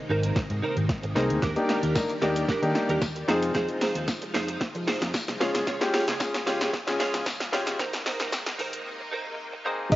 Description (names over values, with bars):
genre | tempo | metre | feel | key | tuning
dance-pop | 113 BPM | 4/4 | straight | unclear | A4 = 438 Hz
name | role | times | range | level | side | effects
string machine, violins | sustained chords | 0.0-10.0 s | C3 to D5 | -36 LUFS | equal | ensemble chorus, sidechain pumping, cassette tape
direct-recorded clean electric guitar | riff | 0.1-10.0 s | D4 to Db5 | -31 LUFS | right 3 dB | ensemble chorus, cassette tape
vintage muted fingered electric bass | bass | 0.1-10.0 s | G1 to F3 | -31 LUFS | equal | sidechain pumping
deep house drum kit | drums | 0.2-10.0 s | crash cymbal, hi-hat, kick drum, shaker, snare drum | -29 LUFS | equal | cassette tape
clear baby grand piano | accompaniment | 1.2-10.0 s | Ab3 to Bb4 | -27 LUFS | left 2 dB | sidechain pumping, cassette tape
tambourine | percussion | 2.0-8.5 s | none | -40 LUFS | left 3 dB | none
airy dreamy lead | melody | 9.9-10.0 s | Eb5 | -19 LUFS | right 1 dB | chorus, sidechain pumping
room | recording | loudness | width
light reverb | home recording on cassette, high-pass filter, nothing above 7.5 kHz | -24 LUFS | side -16 dB against mid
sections
0.0-9.9 A section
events
build-up 0.0-9.9; drum fill 0.0-8.9; filter sweep 0.0-9.9; break 8.9-9.9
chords
0.0 Abadd9; 1.4 Ebmaj7; 3.3 Fm7; 5.4 Db; 7.8 Abadd9